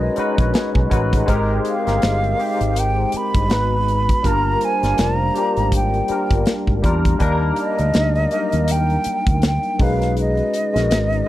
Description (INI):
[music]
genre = lush 1970s-style soul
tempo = 81 BPM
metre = 4/4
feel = swing 58% on 16ths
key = Eb major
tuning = A4 = 440 Hz
[part]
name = concert flute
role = melody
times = 0.0-11.3 s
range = D#5 to Cb6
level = -22 LUFS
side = equal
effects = tape echo
[part]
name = barky tine electric piano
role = accompaniment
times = 0.0-11.3 s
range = Gb3 to G#5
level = -22 LUFS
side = left 2 dB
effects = overdrive, ensemble chorus
[part]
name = fingered electric bass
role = bass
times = 0.0-11.2 s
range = F1 to Fb2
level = -20 LUFS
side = equal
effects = none
[part]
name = vibraphone with soft mallets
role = texture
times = 0.0-11.3 s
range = G#4 to F5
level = -31 LUFS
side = right 2 dB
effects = none
[part]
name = modern studio drum kit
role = drums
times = 0.2-11.3 s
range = hi-hat, kick drum, snare drum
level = -20 LUFS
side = equal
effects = none
[sound]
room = studio ambience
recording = dry, close 1970s-style studio recording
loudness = -16 LUFS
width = side -14 dB against mid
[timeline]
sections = 0.0-11.3 A section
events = tine electric piano fill 0.2-1.3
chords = 0.0 B69; 1.3 Abmaj9; 3.5 Abm7; 4.2 Gm7; 7.2 Ebmaj7; 9.8 B69